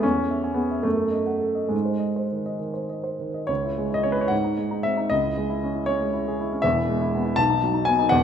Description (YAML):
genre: classical, romantic character piece for solo piano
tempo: 65-82 BPM (dotted quarters)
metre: 6/8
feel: rubato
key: C# minor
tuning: A4 = 441 Hz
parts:
  - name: warm baby grand piano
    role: solo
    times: 0.0-8.2 s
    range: E1 to A5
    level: -21 LUFS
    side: equal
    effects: none
room: moderate recital hall reverb, RT60 1.7 s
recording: minimal, uncompressed stereo recording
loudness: -22 LUFS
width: side -8 dB against mid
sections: 0.0-3.5 A section; 3.5-8.2 B section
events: none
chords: 0.0 C#m/E; 0.8 D#dim/F#; 1.7 G#; 3.5 C#m; 4.3 G#7; 5.1 C#m; 6.6 E; 7.4 B7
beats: | 0.03 0.85 | 1.73 2.61 | 3.49 4.32 | 5.11 5.88 | 6.64 7.38 | 8.13